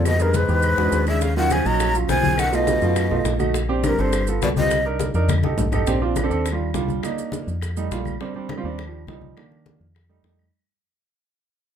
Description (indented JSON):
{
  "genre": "Afro-Cuban jazz",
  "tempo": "206 BPM",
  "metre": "4/4",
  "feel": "straight",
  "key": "Bb major",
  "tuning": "A4 = 439 Hz",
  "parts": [
    { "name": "breathy mellow jazz flute", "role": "melody", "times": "0.0-4.8 s", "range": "Bb4 to Bb5", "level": "-23 LUFS", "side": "left 1 dB", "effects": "none" },
    { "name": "breathy baritone saxophone", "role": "second line", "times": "0.0-4.8 s", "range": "G2 to Gb3", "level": "-27 LUFS", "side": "left 5 dB", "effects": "none" },
    { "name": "warm grand piano", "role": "accompaniment", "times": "0.0-10.4 s", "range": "Eb3 to Bb4", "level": "-25 LUFS", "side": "right 6 dB", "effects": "none" },
    { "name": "fingered electric bass", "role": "bass", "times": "0.0-10.5 s", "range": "G1 to F#2", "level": "-23 LUFS", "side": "left 1 dB", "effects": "none" },
    { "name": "bongos", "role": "percussion", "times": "0.1-10.4 s", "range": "none", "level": "-32 LUFS", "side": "left 5 dB", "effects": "none" },
    { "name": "claves", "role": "percussion", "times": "0.1-10.5 s", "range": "none", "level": "-37 LUFS", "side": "left 2 dB", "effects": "none" },
    { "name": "congas", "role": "percussion", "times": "0.1-10.4 s", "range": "none", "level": "-28 LUFS", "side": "left 4 dB", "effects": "none" },
    { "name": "maracas", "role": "percussion", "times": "0.1-8.2 s", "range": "none", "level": "-37 LUFS", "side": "right 8 dB", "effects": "none" }
  ],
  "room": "moderate club reverb, RT60 0.6 s",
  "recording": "minimal, uncompressed stereo recording",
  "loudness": "-19 LUFS",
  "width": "side -8 dB against mid",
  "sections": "0.0-5.9 A section; 5.9-10.5 B section",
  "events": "drum fill 0.1-1.2, 5.3-5.9; fade-out 5.9-10.5",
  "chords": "0.1 Fm7b5; 0.6 E13; 1.2 Ebm9; 2.4 B7#11; 3.5 Bb69; 4.1 G7; 4.7 Cm7; 5.3 F7; 5.9 Bb69; 6.5 Ebmaj7; 7.0 Bbadd11; 7.6 F7; 8.2 Ebmaj13; 8.8 Ebmaj7; 9.4 Bbadd11; 9.9 F7"
}